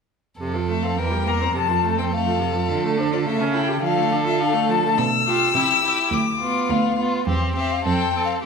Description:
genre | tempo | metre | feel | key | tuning
quick classical-period movement for string quartet | 105 BPM | 2/4 | rubato | F major, C major from 5.0 s | A4 = 444 Hz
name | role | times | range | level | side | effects
rich violin | second line | 0.4-8.5 s | F4 to Bb4 | -27 LUFS | equal | none
clear viola | accompaniment | 0.4-8.5 s | C3 to G4 | -24 LUFS | right 2 dB | none
rich cello | bass | 0.4-8.3 s | D2 to D3 | -24 LUFS | right 4 dB | none
rich violin | melody | 0.7-8.3 s | C5 to E6 | -23 LUFS | left 10 dB | none
room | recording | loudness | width
wet recital hall reverb, RT60 1.4 s | minimal, uncompressed stereo recording | -18 LUFS | side -5 dB against mid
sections
0.4-8.5 A section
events
none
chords
0.4 F; 1.0 C7/E; 1.6 F; 2.7 Dm; 3.3 A7/C#; 3.8 Dm; 5.0 G7/B; 5.5 C; 6.1 Bdim/D; 7.3 C/E; 7.9 F

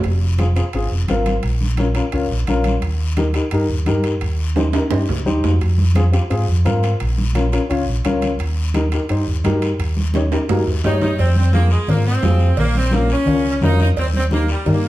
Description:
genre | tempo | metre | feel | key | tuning
latin, cumbia | 172 BPM | 4/4 | straight | F minor | A4 = 441 Hz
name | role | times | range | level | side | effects
fingered electric bass | bass | 0.0-14.9 s | F1 to Ab2 | -18 LUFS | equal | none
congas | percussion | 0.0-14.9 s | none | -24 LUFS | equal | none
guiro | percussion | 0.0-14.9 s | none | -34 LUFS | left 5 dB | none
timbales and cowbell | percussion | 0.0-14.8 s | none | -27 LUFS | right 4 dB | none
dark upright piano | accompaniment | 0.4-14.8 s | C4 to Db5 | -22 LUFS | left 2 dB | none
bright saxophone section | melody | 10.9-14.9 s | G3 to Eb4 | -21 LUFS | equal | none
room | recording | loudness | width
wet large studio reverb, RT60 0.8 s | heard from further back in the room | -15 LUFS | side -16 dB against mid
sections
0.0-11.2 A section; 11.2-14.9 B section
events
drum fill 4.6-5.6, 10.1-11.2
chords
0.0 Fm; 1.4 Bbm; 2.8 Eb; 5.6 Fm; 7.0 Bbm; 8.4 Eb; 11.2 Fm; 12.6 Bbm; 14.0 Eb

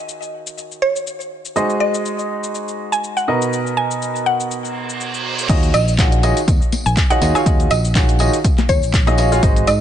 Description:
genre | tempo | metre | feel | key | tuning
piano house | 122 BPM | 4/4 | swing 55% on 16ths | Eb minor | A4 = 440 Hz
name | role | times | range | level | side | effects
clear upright piano | riff | 0.0-9.7 s | B2 to Gb5 | -20 LUFS | right 1 dB | sidechain pumping, digital delay
garage drum kit | drums | 0.1-9.8 s | cabasa, crash cymbal, handclaps, hi-hat, woodblock | -25 LUFS | left 3 dB | none
mallet-like synth pluck | melody | 0.8-9.8 s | Db5 to Ab5 | -22 LUFS | right 1 dB | chorus, digital delay
reverse cymbal | sound effects | 4.7-5.5 s | none | -25 LUFS | right 5 dB | none
fingered electric bass | bass | 5.5-9.8 s | Ab1 to Ab2 | -18 LUFS | equal | sidechain pumping
electronic kick drum | drums | 5.5-9.5 s | none | -16 LUFS | equal | none
tambourine and congas | percussion | 5.5-9.8 s | none | -29 LUFS | left 5 dB | none
room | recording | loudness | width
little or no reverb | nothing above 10.3 kHz | -15 LUFS | side -10 dB against mid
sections
0.0-5.5 A section; 5.5-9.8 B section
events
reverse cymbal 4.7-5.5; drop 5.5-9.8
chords
0.0 Ebm11; 1.6 Ab7; 3.3 Bmaj7; 5.5 Ebm11

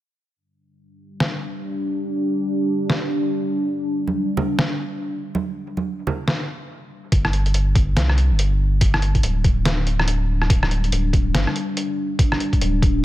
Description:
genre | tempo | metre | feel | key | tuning
deep dubstep | 142 BPM | 4/4 | swing 60% on 16ths, half-time | unclear | A4 = 438 Hz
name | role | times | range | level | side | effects
deep dark ambient pad | sustained chords | 1.3-13.0 s | G3 to D4 | -25 LUFS | equal | chorus, built-in reverb
trip hop sampler-style drum kit | drums | 1.2-12.9 s | hi-hat, rim click, snare drum | -24 LUFS | equal | none
congas | percussion | 4.1-6.2 s | none | -25 LUFS | right 4 dB | none
saturated sub bass | bass | 7.1-13.0 s | D1 to C2 | -19 LUFS | equal | tube saturation
electronic kick drum | drums | 7.1-12.9 s | none | -18 LUFS | equal | none
room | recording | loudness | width
light reverb, digital ambience | none | -18 LUFS | side -15 dB against mid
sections
0.4-7.1 A section; 7.1-13.0 B section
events
stop 6.7-7.1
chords
0.4 G5

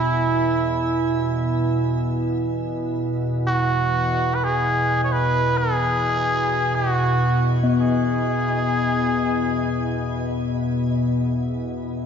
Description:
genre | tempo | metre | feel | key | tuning
world meditative, free-time meditation music | free time | none | none | E major pentatonic | A4 = 438 Hz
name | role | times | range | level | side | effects
trumpet with cup mute | melody | 0.0-10.4 s | E4 to C#5 | -23 LUFS | equal | shimmer reverb, analog delay
organ-like drone | drone | 0.0-12.1 s | E2 to B2 | -23 LUFS | equal | ensemble chorus, built-in reverb
bronze singing bowl | texture | 0.0-12.1 s | B3 to F#4 | -26 LUFS | left 1 dB | stereo widening, shimmer reverb
room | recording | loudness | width
moderate plate reverb, RT60 2.5 s | echo-heavy mix, nothing above 7.5 kHz | -19 LUFS | side -7 dB against mid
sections
0.0-12.1 A section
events
none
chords
none

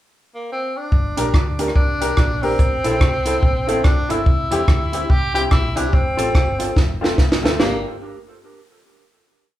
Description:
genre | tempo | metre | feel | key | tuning
ska | 144 BPM | 4/4 | swing 61% on 8ths | G dorian | A4 = 442 Hz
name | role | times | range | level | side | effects
clear tenor saxophone | melody | 0.3-7.8 s | Bb3 to G4 | -23 LUFS | equal | none
hollow-body short-scale fingered electric bass | bass | 0.9-7.8 s | F1 to E2 | -26 LUFS | equal | none
compact cocktail drum kit | drums | 0.9-7.7 s | hi-hat, kick drum, rim click, snare drum | -17 LUFS | equal | none
hollow-body jazz guitar | accompaniment | 1.2-7.8 s | D4 to C5 | -27 LUFS | right 3 dB | analog delay
warm upright piano | stabs | 1.2-7.8 s | Bb3 to Bb4 | -26 LUFS | left 4 dB | none
room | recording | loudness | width
moderate large studio reverb, RT60 0.8 s | band playing live in one room | -16 LUFS | side -13 dB against mid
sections
0.0-0.9 pickup bar; 0.9-7.6 head; 7.6-9.3 final chord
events
drum fill 6.8-7.6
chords
0.0 N.C.; 0.9 Gm; 2.6 Am; 4.3 C; 5.9 F; 7.6 Gm

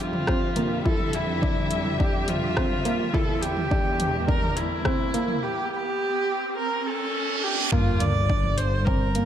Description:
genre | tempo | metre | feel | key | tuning
piano and strings electronica | 105 BPM | 4/4 | straight | unclear | A4 = 440 Hz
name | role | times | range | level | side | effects
rich viola | melody | 0.0-9.3 s | E4 to D5 | -27 LUFS | right 1 dB | low-pass filter, digital delay
muted studio string section | sustained chords | 0.0-5.4, 9.1-9.3 s | E2 to E5 | -30 LUFS | left 1 dB | sidechain pumping
dark upright piano | riff | 0.0-9.3 s | Bb3 to E4 | -30 LUFS | right 2 dB | digital delay
riser, reverse cymbal and sub drop | sound effects | 1.2-9.3 s | none | -32 LUFS | right 1 dB | none
deep house drum kit | drums | 0.1-9.3 s | hi-hat, rim click, toms | -32 LUFS | equal | overdrive
electronic kick drum | drums | 0.3-9.0 s | none | -26 LUFS | equal | overdrive
muted chamber double bass section | bass | 7.7-9.3 s | G1 | -25 LUFS | equal | sidechain pumping
room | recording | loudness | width
moderate lush hall reverb, RT60 2.6 s | dark, warm production | -22 LUFS | side -10 dB against mid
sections
0.0-7.7 A section; 7.7-9.3 B section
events
build-up 0.0-7.7; riser 1.2-7.7; reverse cymbal 6.6-7.7; drop 7.7-9.3; impact 7.7-9.3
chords
0.0 F5; 3.1 C/E; 7.7 Gm

